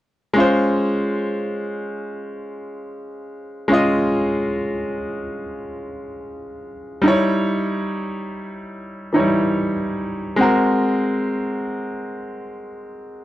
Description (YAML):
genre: reggae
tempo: free time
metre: none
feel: none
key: Db major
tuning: A4 = 438 Hz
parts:
  - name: bright grand piano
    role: accompaniment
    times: 0.3-13.2 s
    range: Fb3 to Eb5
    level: -20 LUFS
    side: equal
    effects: none
room: moderate booth ambience, RT60 0.2 s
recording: dry, close 1970s-style studio recording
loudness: -18 LUFS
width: side -14 dB against mid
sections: 0.4-13.2 A section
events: none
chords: 0.4 Dbmaj7; 7.0 Eb7b9; 10.4 Ab9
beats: free time